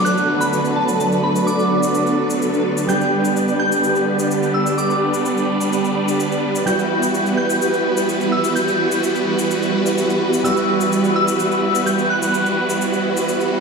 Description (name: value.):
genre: EDM, festival progressive house.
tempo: 127 BPM.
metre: 4/4.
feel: straight.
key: unclear.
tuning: A4 = 441 Hz.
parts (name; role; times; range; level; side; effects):
soft synth bell; melody; 0.0-13.6 s; A5 to G6; -22 LUFS; left 1 dB; chorus, diffuse ambient delay.
warm concert grand piano; accompaniment; 0.0-13.6 s; G3 to G4; -27 LUFS; right 2 dB; none.
rich studio string section; sustained chords; 0.0-13.6 s; D3 to B4; -23 LUFS; equal; none.
supersaw chords; riff; 0.0-13.6 s; F#3 to D5; -18 LUFS; right 1 dB; phaser, low-pass filter, diffuse ambient delay.
downlifter and reverse cymbal; sound effects; 0.0-2.9, 13.5-13.6 s; none; -33 LUFS; equal; none.
shaker; drums; 0.1-13.5 s; none; -31 LUFS; left 4 dB; overdrive.
room: wet lush hall reverb, RT60 1.6 s.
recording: dreamy mix soaked in reverb, studio reverb.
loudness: -16 LUFS.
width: side -4 dB against mid.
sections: 0.0-13.6 A section.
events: filter sweep on supersaw synth 0.0-13.6.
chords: 0.0 Bm7; 2.9 G; 6.7 Emadd9.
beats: 0.05 0.52 | 0.99 1.47 1.94 2.41 | 2.88 3.36 3.83 4.30 | 4.78 5.25 5.72 6.19 | 6.67 7.14 7.61 8.08 | 8.55 9.03 9.50 9.97 | 10.44 10.92 11.39 11.86 | 12.33 12.81 13.28.